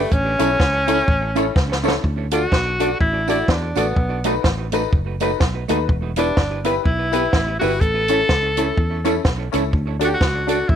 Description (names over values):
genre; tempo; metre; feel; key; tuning
ska; 125 BPM; 4/4; swing 58% on 8ths; D major; A4 = 439 Hz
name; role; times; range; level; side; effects
breathy tenor saxophone; melody; 0.0-10.8 s; A3 to A4; -21 LUFS; equal; none
warm upright piano; stabs; 0.0-10.6 s; C#4 to D5; -24 LUFS; left 13 dB; none
fingered electric bass; bass; 0.0-10.8 s; E1 to E2; -24 LUFS; equal; none
compact cocktail drum kit; drums; 0.1-10.8 s; hi-hat, kick drum, snare drum; -20 LUFS; equal; none
hollow-body jazz guitar; accompaniment; 0.4-10.6 s; A3 to D5; -25 LUFS; right 12 dB; tape echo
tambourine; percussion; 0.4-10.6 s; none; -40 LUFS; right 14 dB; none
room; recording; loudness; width
light reverb, studio ambience; 1960s-style stereo with parts hard left and right; -17 LUFS; side -9 dB against mid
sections
0.0-2.0 A section; 2.0-10.8 B section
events
drum fill 1.6-2.0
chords
0.1 A; 2.0 D; 4.0 B7; 5.9 Em; 7.8 A; 9.7 D